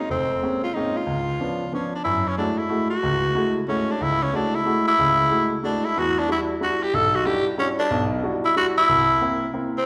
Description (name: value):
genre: jazz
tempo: 184 BPM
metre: 3/4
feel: swing 64% on 8ths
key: unclear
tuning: A4 = 441 Hz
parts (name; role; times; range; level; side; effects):
- growling tenor saxophone; melody; 0.0-9.9 s; C4 to A4; -24 LUFS; equal; none
- clear grand piano; accompaniment; 0.1-9.8 s; F1 to F#4; -27 LUFS; equal; none
room: wet recital hall reverb, RT60 1.6 s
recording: recorded in a church or concert hall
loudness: -22 LUFS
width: mono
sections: 0.0-2.0 A section; 2.0-9.9 B section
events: none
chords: 0.0 Bbm9; 1.1 Db7b9; 2.0 F#m9; 5.9 Em9; 8.9 C7